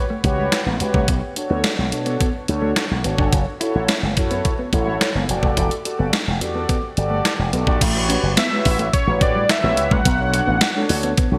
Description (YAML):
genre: early-eighties boogie funk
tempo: 107 BPM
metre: 4/4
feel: straight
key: B minor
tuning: A4 = 444 Hz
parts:
  - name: mellow synth brass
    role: accompaniment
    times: 0.0-11.4 s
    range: D4 to D5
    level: -26 LUFS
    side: equal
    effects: chorus
  - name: mellow electric guitar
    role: riff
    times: 0.1-11.3 s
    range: G3 to F#4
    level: -31 LUFS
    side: equal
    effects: subtle chorus
  - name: slap bass with an envelope filter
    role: bass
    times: 0.2-11.4 s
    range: E1 to B2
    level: -24 LUFS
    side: equal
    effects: none
  - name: clean 12-bit digital drum machine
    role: drums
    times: 0.2-11.3 s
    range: crash cymbal, hi-hat, kick drum, snare drum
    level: -23 LUFS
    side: equal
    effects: gated reverb
  - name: fat analog lead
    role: melody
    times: 8.4-11.0 s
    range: C#5 to F#5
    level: -24 LUFS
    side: equal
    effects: none
room: moderate lush hall reverb, RT60 2.0 s, digital ambience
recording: bright 1980s-style digital production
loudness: -19 LUFS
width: mono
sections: 0.0-7.8 A section; 7.8-11.4 B section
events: none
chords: 0.0 A13; 1.1 Bm7; 3.3 F#m7; 5.3 Em11; 7.8 A13; 10.1 Bm7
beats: 0.52 | 1.08 1.65 2.21 2.77 | 3.33 3.89 4.45 5.01 | 5.57 6.13 6.69 7.25 | 7.81 8.38 8.94 9.50 | 10.06 10.62 11.18